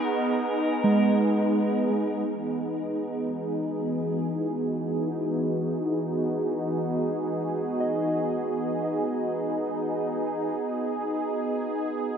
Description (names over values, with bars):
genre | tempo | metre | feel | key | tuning
ambient | free time | none | none | unclear | A4 = 440 Hz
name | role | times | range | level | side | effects
pedal steel guitar | melody | 0.0-1.2 s | B4 | -39 LUFS | left 1 dB | diffuse ambient delay
warm analog pad | sustained chords | 0.0-12.2 s | E3 to G#4 | -26 LUFS | right 1 dB | chorus
muted felt-like synth keys | arpeggios | 0.8-12.2 s | G#3 to D#5 | -31 LUFS | right 2 dB | chorus, diffuse ambient delay
room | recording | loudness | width
wet huge ambient reverb, RT60 8.5 s | none | -25 LUFS | side -7 dB against mid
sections
0.0-2.3 A section; 2.3-12.2 B section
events
fade-in on synth keys 2.3-12.2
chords
0.0 G#m; 2.3 Emaj7; 10.5 G#m